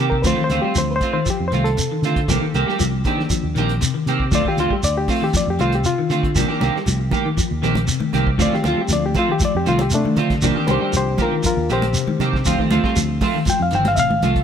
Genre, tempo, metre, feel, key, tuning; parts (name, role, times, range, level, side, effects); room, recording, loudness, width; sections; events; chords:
afrobeat; 118 BPM; 4/4; straight; A4 = 440 Hz
bright reed electric piano; accompaniment; 0.0-14.4 s; Eb3 to G5; -22 LUFS; left 2 dB
semi-hollow electric guitar; arpeggios; 0.0-14.3 s; C3 to G3; -25 LUFS; left 6 dB; ensemble chorus, slapback echo
semi-hollow electric guitar; stabs; 0.0-14.4 s; Eb3 to G4; -23 LUFS; right 6 dB; wide subtle chorus
fingered electric bass; bass; 0.0-14.4 s; G1 to D3; -22 LUFS; right 1 dB
warm soul drum kit; drums; 0.1-14.4 s; hi-hat, kick drum, snare drum; -26 LUFS; right 1 dB
shekere; percussion; 0.2-14.4 s; -24 LUFS; right 2 dB
congas; percussion; 6.6-14.4 s; -27 LUFS; equal
light reverb; -16 LUFS; side -8 dB against mid
0.0-14.4 A section
reed electric piano solo 0.0-14.4
0.3 Dm7; 2.3 Cm7; 4.3 Dm7; 6.4 Cm7; 8.4 Dm7; 10.4 Cm7; 12.5 Dm7